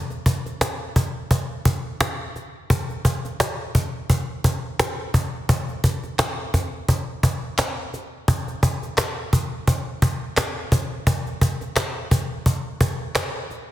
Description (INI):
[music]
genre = pop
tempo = 86 BPM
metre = 4/4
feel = swing 56% on 16ths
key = none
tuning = none
[part]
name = cajon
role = drums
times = 0.1-13.6 s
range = none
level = -21 LUFS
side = equal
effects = none
[part]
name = group handclap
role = percussion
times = 6.2-13.3 s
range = none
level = -32 LUFS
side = left 1 dB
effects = none
[sound]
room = moderate concert hall reverb, RT60 1.8 s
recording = dense, heavily limited modern master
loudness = -21 LUFS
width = side -13 dB against mid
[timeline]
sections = 0.0-13.7 A section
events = none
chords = none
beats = 0.61 1.31 2.00 | 2.70 3.40 4.10 4.79 | 5.49 6.19 6.88 7.58 | 8.28 8.98 9.67 10.37 | 11.07 11.76 12.46 13.16